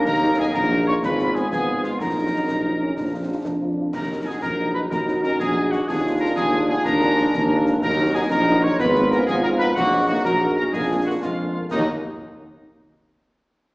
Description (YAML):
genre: military-style march for wind band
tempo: 124 BPM (dotted quarters)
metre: 6/8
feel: straight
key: Eb minor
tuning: A4 = 439 Hz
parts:
  - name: mellow trumpet section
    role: melody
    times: 0.0-11.8 s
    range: Eb4 to Db5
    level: -25 LUFS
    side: equal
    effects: none
  - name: dark euphonium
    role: second line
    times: 0.0-11.4 s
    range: Ab3 to Gb4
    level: -26 LUFS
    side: right 1 dB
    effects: none
  - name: piccolo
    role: second line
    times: 0.0-11.9 s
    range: F5 to Eb6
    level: -28 LUFS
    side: equal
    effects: none
  - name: warm trombone section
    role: sustained chords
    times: 0.0-11.9 s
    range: F3 to F4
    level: -30 LUFS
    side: equal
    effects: none
  - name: mellow tuba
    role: bass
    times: 0.0-11.9 s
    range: Ab1 to F2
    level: -24 LUFS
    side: equal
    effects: none
  - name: mellow woodwind section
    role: second line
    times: 0.1-11.8 s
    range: Ab3 to Eb5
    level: -28 LUFS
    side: equal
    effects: none
  - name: concert snare drum, clash cymbals and concert bass drum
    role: drums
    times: 0.1-11.9 s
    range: none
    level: -32 LUFS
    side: equal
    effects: none
  - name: dark French horn section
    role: accompaniment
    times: 0.2-11.9 s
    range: D3 to F4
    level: -31 LUFS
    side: equal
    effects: none
room: wet recital hall reverb, RT60 1.6 s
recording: heard from further back in the room, small speaker sound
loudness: -18 LUFS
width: side -23 dB against mid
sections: 0.0-11.7 A section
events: none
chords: 0.1 Ebm; 1.0 Fdim/Ab; 2.0 Ebm/Bb; 3.0 Bb; 3.9 Ebm; 5.9 Bb7/Eb; 7.8 Ebm; 8.8 Fdim/Ab; 9.8 Ebm/Bb; 10.7 Bb7; 11.7 Ebm